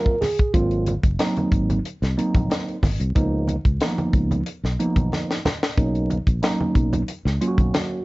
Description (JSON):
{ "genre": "funk", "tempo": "92 BPM", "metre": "4/4", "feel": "straight", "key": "unclear", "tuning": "A4 = 440 Hz", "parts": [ { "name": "mellow tine electric piano", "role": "stabs", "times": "0.0-8.0 s", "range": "Fb3 to Bb4", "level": "-23 LUFS", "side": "right 2 dB", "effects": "phaser" }, { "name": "tight funk drum kit", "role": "drums", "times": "0.1-7.9 s", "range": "hi-hat, kick drum, snare drum", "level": "-22 LUFS", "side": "equal", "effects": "none" }, { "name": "congas", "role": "percussion", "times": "0.2-7.9 s", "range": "none", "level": "-30 LUFS", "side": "right 1 dB", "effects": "none" }, { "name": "fingered electric bass", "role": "bass", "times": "0.5-7.7 s", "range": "Gb1 to Db2", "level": "-23 LUFS", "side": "equal", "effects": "none" } ], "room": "light reverb", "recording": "vinyl crackle, nothing above 7.7 kHz", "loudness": "-19 LUFS", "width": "side -21 dB against mid", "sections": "0.0-8.0 A section", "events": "tine electric piano fill 0.0-0.5; drum fill 5.1-5.8", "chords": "0.0 Ab9; 3.2 Db13; 5.8 Bmaj9", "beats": "| 0.54 1.20 1.85 2.50 | 3.16 3.81 4.47 5.12 | 5.78 6.43 7.08 7.74" }